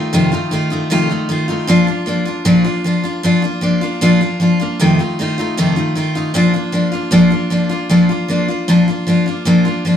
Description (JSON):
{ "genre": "rock", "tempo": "154 BPM", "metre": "4/4", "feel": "straight", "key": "Bb major", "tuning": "A4 = 440 Hz", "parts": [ { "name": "picked steel-string acoustic guitar", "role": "solo", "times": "0.0-10.0 s", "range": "F2 to F4", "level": "-13 LUFS", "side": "equal", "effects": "none" } ], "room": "wet studio reverb, RT60 0.6 s", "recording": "band playing live in one room", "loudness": "-13 LUFS", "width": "side -9 dB against mid", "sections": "0.0-7.9 A section; 7.9-10.0 B section", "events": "none", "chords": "0.0 F7; 1.7 Bb; 4.8 F7; 6.3 Bb" }